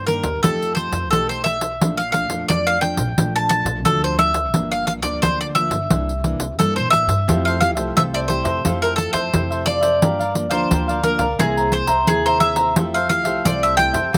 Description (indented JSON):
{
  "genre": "samba and choro",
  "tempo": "88 BPM",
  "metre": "4/4",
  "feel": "straight",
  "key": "F major",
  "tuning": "A4 = 440 Hz",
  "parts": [
    { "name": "bowl-back mandolin", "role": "melody", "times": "0.0-14.2 s", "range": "G#4 to A5", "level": "-22 LUFS", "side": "equal", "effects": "none" },
    { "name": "nylon-string guitar", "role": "accompaniment", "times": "0.0-14.2 s", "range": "F2 to G#4", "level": "-29 LUFS", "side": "equal", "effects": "none" },
    { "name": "upright bass", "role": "bass", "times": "0.0-14.2 s", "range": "G1 to Bb2", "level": "-29 LUFS", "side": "equal", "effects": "none" },
    { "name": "pandeiro", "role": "percussion", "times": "0.1-14.2 s", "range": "none", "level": "-24 LUFS", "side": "equal", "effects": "none" },
    { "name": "cavaquinho", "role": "accompaniment", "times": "7.3-14.2 s", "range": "F4 to Bb5", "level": "-25 LUFS", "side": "equal", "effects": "none" }
  ],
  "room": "little or no reverb",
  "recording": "recorded outdoors, with no room sound",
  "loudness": "-19 LUFS",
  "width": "mono",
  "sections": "0.0-14.2 A section",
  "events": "none",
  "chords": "0.4 F9; 1.8 Bbmaj7; 4.5 Gm7; 5.9 C9; 7.3 Fmaj9; 10.0 Gm7; 11.4 C7alt; 12.8 Fmaj9",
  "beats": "0.43 1.12 | 1.80 2.49 3.17 3.86 | 4.54 5.23 5.91 6.60 | 7.28 7.97 8.65 9.34 | 10.03 10.71 11.40 12.08 | 12.77 13.46 14.14"
}